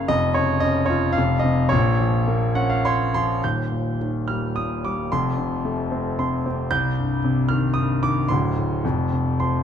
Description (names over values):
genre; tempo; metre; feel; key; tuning
classical, lyrical solo piano; 100-116 BPM; 3/4; rubato; Bb minor; A4 = 435 Hz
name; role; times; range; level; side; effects
warm concert grand piano; solo; 0.0-9.6 s; D1 to G6; -19 LUFS; equal; none
room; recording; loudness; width
moderate scoring stage reverb, RT60 1.7 s; dark, warm production; -19 LUFS; side -8 dB against mid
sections
0.0-3.4 A section; 3.4-9.6 B section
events
grand piano fill 2.3-3.4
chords
0.1 Dbadd9/F; 1.2 F5; 1.7 Bbm; 3.4 Eb; 5.1 F; 6.7 Cm; 8.3 D5; 8.8 F5